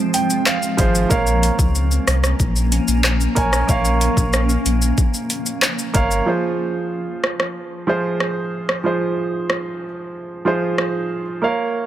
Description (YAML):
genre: dancehall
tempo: 93 BPM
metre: 4/4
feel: straight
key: F minor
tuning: A4 = 441 Hz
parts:
  - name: warm baby grand piano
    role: accompaniment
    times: 0.0-11.9 s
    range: F3 to Ab5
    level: -21 LUFS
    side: right 3 dB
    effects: sidechain pumping
  - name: granular cloud pad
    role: sustained chords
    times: 0.0-6.2 s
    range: F3 to Db4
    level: -24 LUFS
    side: equal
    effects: built-in reverb, sidechain pumping
  - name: island pop drum kit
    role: drums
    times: 0.1-10.9 s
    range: handclaps, hi-hat, kick drum, rim click, shaker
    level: -19 LUFS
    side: equal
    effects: overdrive
  - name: saturated sub bass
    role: bass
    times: 0.8-6.2 s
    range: G1 to Db2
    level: -19 LUFS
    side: equal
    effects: none
room: light reverb, digital ambience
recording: none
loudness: -16 LUFS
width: side -12 dB against mid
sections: 0.0-6.3 A section; 6.3-11.9 B section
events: grand piano fill 0.0-1.1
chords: 0.0 Fm; 1.1 Bbm; 6.3 Fm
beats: 0.46 | 1.11 1.75 2.40 3.04 | 3.69 4.33 4.98 5.62 | 6.27 6.92 7.56 8.21 | 8.85 9.49 10.14 10.79 | 11.43